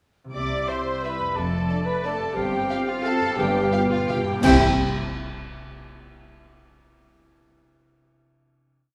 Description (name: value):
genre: classical, orchestral ballroom waltz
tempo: 177 BPM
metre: 3/4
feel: uneven beats, rubato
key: C major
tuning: A4 = 441 Hz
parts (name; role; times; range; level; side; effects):
- concert harp; arpeggios; 0.2-4.6 s; F2 to E5; -35 LUFS; equal; none
- dark studio violin section; second line; 0.3-4.6 s; E5 to D6; -36 LUFS; equal; none
- mellow clarinet; second line; 0.3-4.6 s; C4 to D5; -35 LUFS; equal; none
- mellow flute section; second line; 0.3-4.6 s; E5 to D6; -34 LUFS; equal; none
- dark bassoon; accompaniment; 0.3-4.6 s; G3 to C4; -33 LUFS; equal; none
- dark studio cello section; bass; 0.3-4.6 s; F2 to C3; -31 LUFS; equal; none
- clear oboe; second line; 0.4-4.6 s; D5 to G5; -36 LUFS; equal; none
- warm chamber viola section; accompaniment; 0.4-4.6 s; E4 to D5; -33 LUFS; equal; none
- rich studio double bass section; bass; 0.4-4.6 s; F1 to C2; -31 LUFS; equal; none
- warm studio violin section; melody; 0.7-4.6 s; D5 to G5; -32 LUFS; equal; none
- mellow French horn section; sustained chords; 0.7-4.6 s; G3 to G4; -31 LUFS; equal; none
- cymbal swell, clash cymbals and concert bass drum; percussion; 2.4-5.1 s; none; -31 LUFS; equal; none
- timpani; percussion; 3.4-4.6 s; G2 to C3; -34 LUFS; equal; none
room: wet scoring stage reverb, RT60 1.9 s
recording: studio reverb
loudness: -23 LUFS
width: mono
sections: 0.3-4.4 A section; 4.4-5.5 final chord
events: timpani fill 3.4-4.4; band accent 4.4-4.8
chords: 0.3 C; 1.4 Dm/F; 2.4 G7sus4; 3.4 G7; 4.4 C